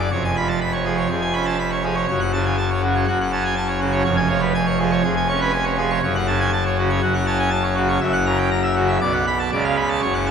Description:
classical, organ toccata; 122 BPM; 4/4; straight; A4 = 440 Hz
pipe organ, full organ; solo; 0.0-10.3 s; E#1 to B5; -18 LUFS; equal
wet church reverb, RT60 2.7 s; -17 LUFS; side -7 dB against mid
0.0-10.3 A section
0.1 C#7/E#; 2.1 F#m; 4.1 C#/E#; 6.0 F#m; 8.0 F#7; 9.0 Bm; 9.5 C#7b9
| 0.12 0.61 1.10 1.60 | 2.09 2.58 3.07 3.56 | 4.06 4.55 5.04 5.54 | 6.03 6.52 7.02 7.52 | 8.02 8.52 9.02 9.52 | 10.03

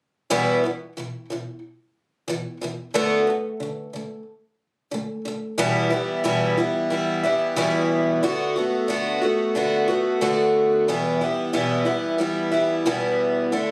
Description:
pop; 91 BPM; 4/4; swing 55% on 16ths; E minor; A4 = 440 Hz
picked twelve-string acoustic guitar; solo; 0.3-13.7 s; E2 to F#4; -23 LUFS; equal
light reverb; recorded on a phone in the room, studio reverb, compression; -23 LUFS; mono
0.3-5.6 A section; 5.6-13.7 B section
0.3 Em; 3.0 Bm7/D; 5.6 Em; 8.2 Bm7/D; 10.9 Em
| 0.31 0.97 1.63 2.29 | 2.95 3.61 4.28 4.93 | 5.59 6.25 6.92 7.58 | 8.23 8.90 9.56 10.22 | 10.88 11.54 12.20 12.86 | 13.52

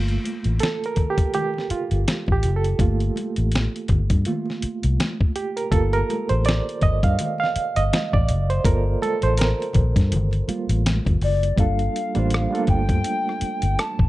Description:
R&B, neo-soul; 82 BPM; 4/4; swing 57% on 16ths; G minor; A4 = 440 Hz
barky reed electric piano; accompaniment; 0.0-14.1 s; G3 to F5; -25 LUFS; right 4 dB; fast tremolo, plate reverb
vintage muted fingered electric bass; bass; 0.0-14.1 s; F#1 to G2; -21 LUFS; left 1 dB
dusty soul sampler-style drum kit; drums; 0.1-14.1 s; hi-hat, kick drum, rim click, snare drum; -22 LUFS; left 1 dB
congas; percussion; 0.1-11.2 s; -33 LUFS; left 4 dB
hollow clarinet-like synth lead; melody; 11.2-14.1 s; D5 to A5; -26 LUFS; left 3 dB; chorus, phaser, plate reverb
light reverb; dark, warm production, nothing above 11.0 kHz; -19 LUFS; side -17 dB against mid
0.0-11.6 A section; 11.6-14.1 B section
reed electric piano solo 0.0-11.6
0.0 Gm9
0.60 1.33 2.06 | 2.80 3.53 4.26 4.99 | 5.72 6.46 7.19 7.92 | 8.65 9.38 10.11 10.85 | 11.58 12.31 13.04 13.77

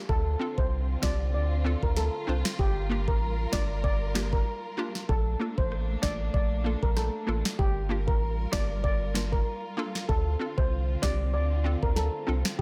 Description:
dancehall; 96 BPM; 4/4; swing 56% on 16ths; G minor; A4 = 439 Hz
warm studio string section; sustained chords; 0.0-12.6 s; D3 to Bb4; -41 LUFS; equal; sidechain pumping
downlifter and swell; sound effects; 0.0-2.6, 12.6 s; barely audible
steel pan; melody; 0.1-12.6 s; G4 to D5; -36 LUFS; equal; analog delay
warm sub bass; bass; 0.1-12.6 s; G1 to D2; -31 LUFS; equal
afro-pop drum kit; drums; 0.1-12.6 s; finger snaps, kick drum, rim click, snare drum; -31 LUFS; equal
hollow square pluck; accompaniment; 0.4-12.4 s; Bb3 to C5; -37 LUFS; equal; chorus
light reverb, digital ambience; -28 LUFS; mono
0.0-12.6 A section
0.1 Dm7; 2.6 Gm7; 5.1 Bbmaj7; 7.6 Gm7; 10.1 Dm7
| 0.09 0.71 1.34 1.97 | 2.59 3.21 3.84 4.46 | 5.09 5.71 6.34 6.96 | 7.59 8.21 8.84 9.46 | 10.09 10.71 11.34 11.96 | 12.59

